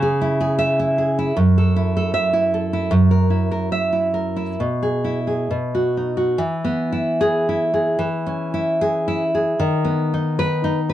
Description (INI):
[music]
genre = romantic piece for solo classical guitar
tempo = 66-80 BPM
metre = 2/4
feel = rubato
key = E major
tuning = A4 = 439 Hz
[part]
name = nylon-string guitar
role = solo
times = 0.0-10.9 s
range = F#2 to E5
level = -17 LUFS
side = right 1 dB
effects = none
[sound]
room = light reverb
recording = dark, warm production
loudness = -17 LUFS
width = side -12 dB against mid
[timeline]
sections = 0.0-6.4 A section; 6.4-10.9 B section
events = none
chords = 0.0 C#m; 1.4 F#m7; 2.9 F#7; 4.6 E/B; 5.5 B; 6.4 E; 8.0 C#m/E; 9.6 B/D#